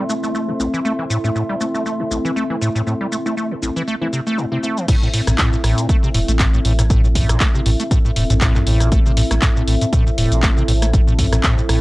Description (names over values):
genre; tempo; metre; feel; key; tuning
acid house; 119 BPM; 4/4; swing 55% on 16ths; A minor; A4 = 443 Hz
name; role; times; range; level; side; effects
dark analog pad; sustained chords; 0.0-11.8 s; C4 to E5; -25 LUFS; equal; chorus, sidechain pumping
acid bass, square; riff; 0.0-11.8 s; A1 to A3; -20 LUFS; equal; overdrive, wide subtle chorus, cassette tape, sidechain pumping, tape echo
deep mellow chord stab; stabs; 0.0-4.8 s; A3 to E4; -26 LUFS; left 1 dB; chorus, tape echo
warbly tape-like pad; texture; 0.0-4.9 s; C4 to C6; -31 LUFS; equal; chorus, built-in reverb, sidechain pumping
punchy analog drum machine; drums; 0.1-11.8 s; crash cymbal, handclaps, hi-hat, rim click, shaker, toms; -23 LUFS; equal; none
electronic kick drum; drums; 4.9-11.6 s; none; -17 LUFS; equal; none
saturated sub bass; bass; 5.3-11.8 s; E1 to A1; -18 LUFS; equal; tube saturation, sidechain pumping
room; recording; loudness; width
little or no reverb; dry, gritty hardware recording, transformer saturation, cassette tape; -15 LUFS; side -19 dB against mid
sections
0.0-4.9 A section; 4.9-11.8 B section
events
drop 4.9-11.8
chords
0.0 Am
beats
0.35 | 0.85 1.35 1.86 2.36 | 2.87 3.37 3.88 4.38 | 4.88 5.39 5.89 6.40 | 6.90 7.41 7.91 8.41 | 8.92 9.42 9.93 10.43 | 10.94 11.44